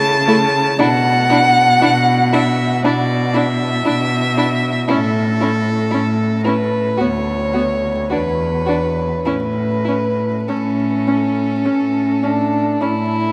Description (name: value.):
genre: classical, slow romantic movement for string quartet.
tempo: 49-60 BPM.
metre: 4/4.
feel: rubato.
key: A major.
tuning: A4 = 440 Hz.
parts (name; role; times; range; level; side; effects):
clear violin; second line; 0.0-13.3 s; A4 to A5; -21 LUFS; equal; none.
rich cello; bass; 0.0-13.3 s; D2 to C#3; -21 LUFS; equal; none.
rich violin; melody; 0.3-13.3 s; C#4 to F#4; -24 LUFS; equal; none.
rich viola; accompaniment; 0.3-12.9 s; A3 to D4; -25 LUFS; equal; none.
room: wet cathedral reverb, RT60 6.2 s.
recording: in a vast, echoing space, vinyl crackle.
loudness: -17 LUFS.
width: mono.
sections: 0.0-13.3 A section.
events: none.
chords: 0.0 A/C#; 0.8 E5/B; 4.9 A; 7.0 Bm/D; 8.1 E5; 9.3 A.